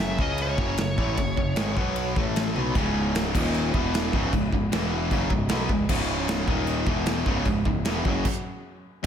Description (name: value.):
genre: heavy metal.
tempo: 153 BPM.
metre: 4/4.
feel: straight.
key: C# minor.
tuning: A4 = 441 Hz.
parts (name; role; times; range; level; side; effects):
nasal lead guitar with a parked wah; melody; 0.0-2.3 s; C#5 to E5; -32 LUFS; equal; overdrive, digital delay.
distorted electric guitar; riff; 0.0-9.1 s; C#2 to C#4; -30 LUFS; left 9 dB; overdrive, slapback echo.
tight distorted guitar; riff; 0.0-9.1 s; C#2 to C#4; -31 LUFS; right 9 dB; distortion, slapback echo.
overdriven picked electric bass; bass; 0.0-9.1 s; C#1 to C#2; -30 LUFS; equal; none.
modern studio drum kit; drums; 0.0-9.1 s; china cymbal, crash cymbal, kick drum, ride cymbal, snare drum, toms; -27 LUFS; equal; none.
dark studio string section; sustained chords; 2.8-8.3 s; C#3 to F#5; -38 LUFS; equal; none.
overdriven electric guitar; riff; 2.8-9.1 s; C#2 to B3; -32 LUFS; right 1 dB; slapback echo.
room: moderate recital hall reverb, RT60 1.5 s, studio ambience.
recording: big arena sound.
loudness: -22 LUFS.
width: side -8 dB against mid.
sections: 0.0-2.8 A section; 2.8-9.0 B section.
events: drum fill 2.6; stop 8.3-9.0.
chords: 0.2 C#5; 0.6 F#5; 1.8 B5; 2.2 A5; 2.6 B5; 2.8 C#m; 3.4 D#5; 3.7 E5; 4.1 C#m; 4.7 E5; 5.1 C#m; 6.5 D#5; 6.9 E5; 7.3 C#m; 8.1 F#5; 8.9 N.C..